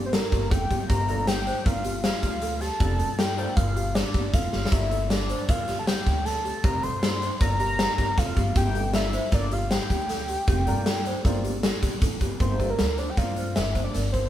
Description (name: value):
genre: progressive instrumental, band music in an uneven meter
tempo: 156 BPM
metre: 5/4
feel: straight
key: G dorian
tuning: A4 = 437 Hz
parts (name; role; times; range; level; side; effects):
- fat analog lead; melody; 0.0-14.3 s; Bb4 to C6; -29 LUFS; equal; none
- worn celesta; arpeggios; 0.0-14.2 s; G4 to C5; -35 LUFS; right 1 dB; none
- upright bass; bass; 0.0-14.3 s; F1 to G2; -29 LUFS; equal; none
- big rock drum kit; drums; 0.1-14.2 s; hi-hat, kick drum, snare drum; -25 LUFS; equal; none
- bright grand piano; accompaniment; 1.1-13.7 s; Bb3 to C5; -37 LUFS; left 1 dB; none
room: light reverb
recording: band playing live in one room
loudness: -22 LUFS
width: side -12 dB against mid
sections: 0.0-12.4 A section; 12.4-14.3 B section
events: drum fill 4.5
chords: 0.0 Gm7